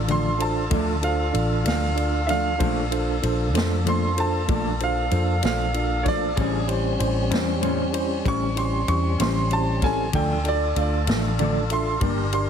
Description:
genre	slow blues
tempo	64 BPM (dotted quarters)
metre	12/8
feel	straight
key	D minor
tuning	A4 = 444 Hz
part	tonewheel organ	sustained chords	0.0-12.5 s	G3 to Bb4	-30 LUFS	equal	slow rotary speaker, overdrive
part	vintage muted fingered electric bass	bass	0.0-12.5 s	G1 to F2	-25 LUFS	left 1 dB	none
part	clear upright piano	second line	0.1-12.5 s	C#5 to C#6	-27 LUFS	right 2 dB	digital delay
part	barky tine electric piano	accompaniment	0.1-12.5 s	C#4 to F5	-28 LUFS	right 3 dB	fast stereo tremolo
part	mellow electric guitar	accompaniment	0.1-12.2 s	G2 to D4	-27 LUFS	left 3 dB	tremolo
part	swinging big-band drum kit	drums	0.1-12.5 s	kick drum, ride cymbal, snare drum	-29 LUFS	equal	none
room	light reverb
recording	heavily compressed radio sound, multiband compression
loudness	-20 LUFS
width	side -8 dB against mid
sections	0.0-12.5 A section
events	upright piano solo 0.0-12.5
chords	0.0 Dm; 2.6 Bbmaj7; 6.4 A7#9; 10.1 Dm

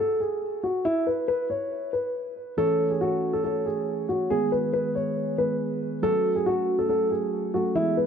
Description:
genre	hip hop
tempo	139 BPM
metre	4/4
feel	half-time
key	unclear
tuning	A4 = 440 Hz
part	dark concert grand piano	melody	0.0-8.1 s	E4 to C#5	-24 LUFS	equal	digital delay
part	muted felt-like synth keys	accompaniment	2.6-8.1 s	D#3 to C#5	-29 LUFS	right 2 dB	chorus
room	light reverb, studio reverb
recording	none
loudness	-23 LUFS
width	side -7 dB against mid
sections	0.0-8.1 A section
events	break 0.0-2.6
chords	0.0 N.C.; 2.6 A; 4.3 G#m; 6.0 F#m

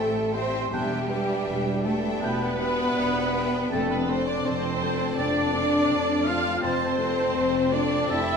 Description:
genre	cinematic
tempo	82 BPM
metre	4/4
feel	rubato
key	unclear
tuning	A4 = 440 Hz
part	rich studio violin section	melody	0.0-8.4 s	G5 to A5	-39 LUFS	left 2 dB	none
part	mellow hollow silver concert flute	second line	0.0-8.4 s	G5 to F6	-34 LUFS	left 2 dB	none
part	warm symphonic violin section	second line	0.0-8.4 s	C4 to E5	-35 LUFS	left 1 dB	none
part	warm concert grand piano	accompaniment	0.0-8.4 s	E2 to C5	-32 LUFS	left 4 dB	none
part	warm studio viola section	accompaniment	0.0-8.4 s	G4 to F5	-29 LUFS	right 1 dB	none
part	mellow French horn section	sustained chords	0.0-8.4 s	G3 to F4	-30 LUFS	left 3 dB	none
part	concert harp	arpeggios	0.0-8.4 s	E2 to C6	-36 LUFS	left 4 dB	none
part	rich studio cello section	bass	0.0-8.4 s	G3 to F4	-30 LUFS	right 2 dB	none
part	rich studio double bass section	bass	0.0-8.4 s	E1 to A1	-33 LUFS	right 5 dB	none
part	mellow clarinet	second line	0.7-8.3 s	C4 to D4	-36 LUFS	left 1 dB	none
part	warm oboe	second line	0.7-8.4 s	G5 to A5	-36 LUFS	right 1 dB	none
room	wet recital hall reverb, RT60 1.4 s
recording	none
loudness	-22 LUFS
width	side -6 dB against mid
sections	0.0-8.4 A section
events	none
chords	0.0 Am7; 0.7 Em7; 3.7 Dm7/F; 6.6 Fmaj7

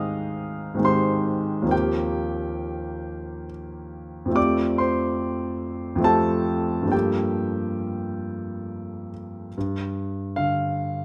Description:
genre	classical, impressionist solo piano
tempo	69 BPM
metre	3/4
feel	uneven beats, rubato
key	G minor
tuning	A4 = 439 Hz
part	clear concert grand piano	solo	0.0-11.0 s	Eb2 to F6	-25 LUFS	equal	none
room	moderate recital hall reverb, RT60 1.4 s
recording	none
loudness	-25 LUFS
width	mono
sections	0.0-9.6 A section; 9.6-11.0 B section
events	none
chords	0.0 Abmaj7; 1.7 Eb69; 4.4 Fadd9; 6.9 Gm9; 9.6 G5

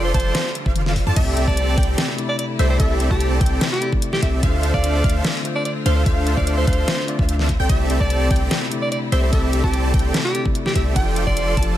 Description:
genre	future bass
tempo	147 BPM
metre	4/4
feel	half-time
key	C major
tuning	A4 = 436 Hz
part	bright alto saxophone	melody	0.0-11.7 s	G4 to D5	-26 LUFS	right 1 dB	sidechain pumping, dub echo
part	clear studio string section	sustained chords	0.0-11.8 s	D3 to F4	-35 LUFS	equal	none
part	wide unison pluck	arpeggios	0.0-11.8 s	E5 to C6	-31 LUFS	right 1 dB	sidechain pumping, dub echo
part	supersaw chords	riff	0.0-11.8 s	F3 to C6	-25 LUFS	right 1 dB	sidechain pumping
part	warm 808-style bass	bass	0.0-11.7 s	F1 to F2	-20 LUFS	equal	sidechain pumping
part	electronic kick drum	drums	0.1-11.7 s	none	-22 LUFS	equal	overdrive
part	pop drum kit	drums	0.1-11.7 s	crash cymbal, hi-hat, ride cymbal, snare drum, toms	-25 LUFS	left 1 dB	overdrive
part	bell-like tine electric piano	accompaniment	1.1-11.8 s	C3 to D5	-27 LUFS	left 3 dB	sidechain pumping, dub echo
room	little or no reverb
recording	none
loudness	-17 LUFS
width	side -12 dB against mid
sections	0.0-11.8 A section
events	drum fill 0.8-1.2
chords	0.0 F69; 1.2 C69; 4.4 Dm7; 7.5 C69; 11.0 F69

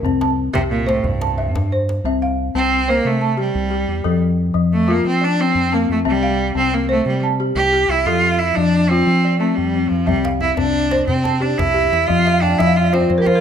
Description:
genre	west african traditional, West African string and xylophone music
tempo	120 BPM (dotted quarters)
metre	12/8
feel	straight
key	C mixolydian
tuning	A4 = 440 Hz
part	balafon	arpeggios	0.0-13.4 s	F3 to A5	-19 LUFS	left 3 dB	none
part	fingered electric bass	bass	0.0-13.4 s	C2 to F3	-22 LUFS	equal	none
part	djembe	percussion	0.1-2.0, 10.1-13.3 s	none	-27 LUFS	left 2 dB	none
part	bright cello	melody	0.5-13.4 s	G2 to G4	-19 LUFS	right 3 dB	none
room	wet recital hall reverb, RT60 1.5 s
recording	none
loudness	-15 LUFS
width	side -8 dB against mid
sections	0.0-2.0 A section; 2.0-13.4 B section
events	cello solo 2.0-13.4; balafon fill 12.3-13.4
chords	0.0 C; 4.1 F; 6.1 C; 8.1 F; 10.1 C; 12.1 F5

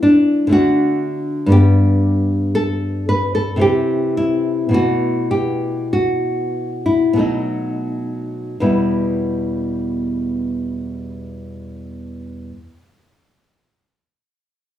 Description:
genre	classical, baroque-style dance for nylon-string guitar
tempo	41-61 BPM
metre	3/4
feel	rubato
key	E minor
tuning	A4 = 440 Hz
part	nylon-string guitar	solo	0.0-12.5 s	E2 to B4	-16 LUFS	equal	none
room	moderate large studio reverb, RT60 0.8 s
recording	band playing live in one room, small room reverb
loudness	-15 LUFS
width	side -11 dB against mid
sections	0.0-8.6 A section; 8.6-13.0 B section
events	slowing down 0.0-8.6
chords	0.0 Em; 0.5 D; 1.5 G; 3.6 C; 4.7 B7sus4; 7.2 B7; 8.6 Em

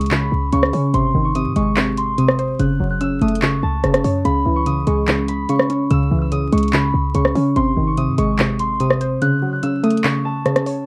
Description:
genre	hip hop, trap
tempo	145 BPM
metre	4/4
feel	half-time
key	C# minor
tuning	A4 = 441 Hz
part	concert harp	melody	0.0-10.9 s	A5 to F#6	-27 LUFS	equal	low-pass filter, plate reverb
part	warbly dusty pluck	accompaniment	0.0-10.9 s	B#2 to C#5	-21 LUFS	equal	chorus, low-pass filter
part	short 808-style bass	bass	0.0-9.2 s	F#1 to C#3	-24 LUFS	equal	none
part	trap drum kit	drums	0.0-10.8 s	handclaps, hi-hat, rim click	-22 LUFS	equal	none
room	light reverb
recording	dark, warm production, vinyl crackle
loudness	-18 LUFS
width	mono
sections	0.0-10.9 A section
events	kick muted 9.2-10.9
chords	0.0 C#m7; 0.9 G#; 2.6 F#m; 4.2 C#m7; 7.6 G#; 9.2 F#m

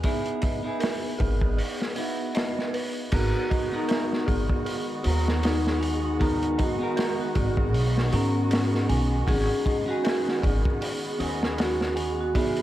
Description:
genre	trip hop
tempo	78 BPM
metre	4/4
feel	swing 56% on 16ths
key	G# minor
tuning	A4 = 439 Hz
part	clean electric guitar	accompaniment	0.0-12.6 s	B3 to A#4	-31 LUFS	equal	harmonic tremolo, vintage 12-bit sampler grit, tape echo
part	dark detuned synth bell	arpeggios	0.0-12.6 s	F#4 to G#5	-34 LUFS	right 2 dB	chorus, phaser, vintage 12-bit sampler grit, tape echo
part	crunchy breakbeat drum kit	drums	0.0-12.6 s	crash cymbal, hi-hat, kick drum, snare drum	-28 LUFS	equal	vintage 12-bit sampler grit
part	backwards swelling texture	texture	0.0-3.1 s	B3 to B4	-42 LUFS	left 2 dB	none
part	upright bass	bass	1.2-12.3 s	G#1 to G#2	-26 LUFS	equal	tube saturation
part	vibraphone with medium hard mallets	melody	3.1-12.6 s	C#4 to G#4	-29 LUFS	equal	tape echo
part	dark chamber string section	sustained chords	3.1-12.6 s	C#3 to F#4	-33 LUFS	right 1 dB	vintage 12-bit sampler grit
room	studio ambience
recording	vinyl crackle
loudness	-23 LUFS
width	side -14 dB against mid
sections	0.0-3.1 A section; 3.1-12.6 B section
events	break 1.6-3.1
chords	0.0 Emaj9#11; 3.1 G#m7; 9.3 B6/G#

